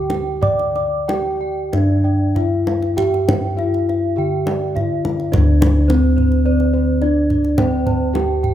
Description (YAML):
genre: Javanese gamelan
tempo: 90-106 BPM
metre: 4/4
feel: straight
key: unclear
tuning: A4 = 441 Hz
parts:
  - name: gamelan-type bronze metallophone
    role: melody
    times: 0.0-8.5 s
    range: C4-45c to D5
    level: -19 LUFS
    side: right 1 dB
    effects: none
  - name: gamelan-type bossed gongs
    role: arpeggios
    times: 0.0-8.5 s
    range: C5-45c to A5+25c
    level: -28 LUFS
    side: left 6 dB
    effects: none
  - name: gamelan-type bronze metallophone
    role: arpeggios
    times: 0.0-8.5 s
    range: C5-45c to D6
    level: -28 LUFS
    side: right 7 dB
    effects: none
  - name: gamelan-type bossed gongs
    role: bass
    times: 0.0-8.5 s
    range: D2 to D5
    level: -19 LUFS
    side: left 1 dB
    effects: none
  - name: kendang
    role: percussion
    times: 0.1-8.5 s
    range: none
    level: -22 LUFS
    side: equal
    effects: none
room: moderate recital hall reverb, RT60 1.9 s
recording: close, detailed microphones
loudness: -15 LUFS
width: side -11 dB against mid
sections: 0.0-5.3 A section; 5.3-8.5 B section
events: none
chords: none